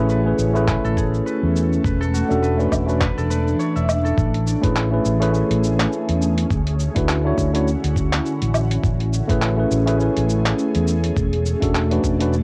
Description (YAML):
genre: sunset chillout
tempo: 103 BPM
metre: 4/4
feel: swing 57% on 16ths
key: A major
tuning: A4 = 443 Hz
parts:
  - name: tine electric piano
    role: accompaniment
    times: 0.0-12.4 s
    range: A3 to G#5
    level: -25 LUFS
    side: equal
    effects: analog delay
  - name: ethereal airy pad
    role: sustained chords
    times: 0.0-12.4 s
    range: D3 to G#4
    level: -28 LUFS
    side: equal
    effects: ensemble chorus, built-in reverb, phaser
  - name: concert harp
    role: arpeggios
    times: 0.0-6.2 s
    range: F#4 to E5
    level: -31 LUFS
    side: equal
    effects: analog delay
  - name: mellow fretless electric bass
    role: bass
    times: 0.0-12.4 s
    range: E1 to E2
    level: -23 LUFS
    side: equal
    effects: analog chorus
  - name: dusty soul sampler-style drum kit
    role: drums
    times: 0.1-12.4 s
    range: handclaps, hi-hat, shaker, woodblock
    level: -29 LUFS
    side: equal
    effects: overdrive, cassette tape
  - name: electronic kick drum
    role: drums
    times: 0.7-12.2 s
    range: none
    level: -25 LUFS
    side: equal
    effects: overdrive, cassette tape
room: light reverb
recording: home recording on cassette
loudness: -20 LUFS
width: mono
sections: 0.0-4.2 A section; 4.2-12.4 A section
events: none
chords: 0.0 Amaj9; 1.8 E13sus4; 4.2 Amaj9; 6.5 Dmaj9; 8.8 Amaj9; 11.2 E13sus4